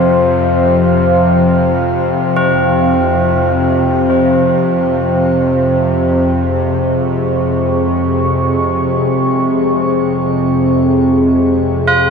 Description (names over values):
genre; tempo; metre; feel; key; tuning
dark ambient drone; free time; none; none; unclear; A4 = 441 Hz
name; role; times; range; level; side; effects
deep dark ambient pad; sustained chords; 0.0-12.1 s; F3 to Db6; -16 LUFS; left 1 dB; chorus, built-in reverb, shimmer reverb
bowed-like drone; drone; 0.0-12.1 s; F2 to C3; -13 LUFS; left 1 dB; built-in reverb
tubular bells; arpeggios; 2.4-12.1 s; C4 to F4; -18 LUFS; right 3 dB; analog delay, shimmer reverb
room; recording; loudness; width
wet spring reverb, RT60 2.2 s; echo-heavy mix; -11 LUFS; side -5 dB against mid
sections
0.0-12.1 A section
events
none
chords
0.0 F5; 4.7 Db